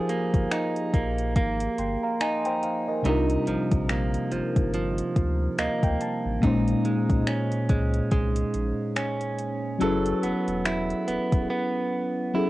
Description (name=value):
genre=contemporary R&B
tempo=71 BPM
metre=4/4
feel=swing 58% on 16ths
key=F minor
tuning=A4 = 440 Hz
part: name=mellow FM electric piano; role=accompaniment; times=0.0-12.5 s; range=Bb2 to C6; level=-28 LUFS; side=left 2 dB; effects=chorus, phaser, cassette tape
part: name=direct-recorded clean electric guitar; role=arpeggios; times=0.0-12.5 s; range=Bb2 to A4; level=-27 LUFS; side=right 2 dB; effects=cassette tape
part: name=smooth R&B drum kit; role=drums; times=0.1-11.5 s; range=finger snaps, hi-hat, kick drum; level=-26 LUFS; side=equal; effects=overdrive, cassette tape
part: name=warm sub bass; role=bass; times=0.3-11.5 s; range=Eb1 to D2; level=-29 LUFS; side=equal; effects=none
room=light reverb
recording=home recording on cassette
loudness=-23 LUFS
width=side -17 dB against mid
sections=0.0-12.5 A section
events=FM electric piano fill 5.2-6.4; drums muted 11.5-12.5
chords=0.0 Fm11; 3.0 Cm11; 6.4 Bbm11; 9.8 Gbm11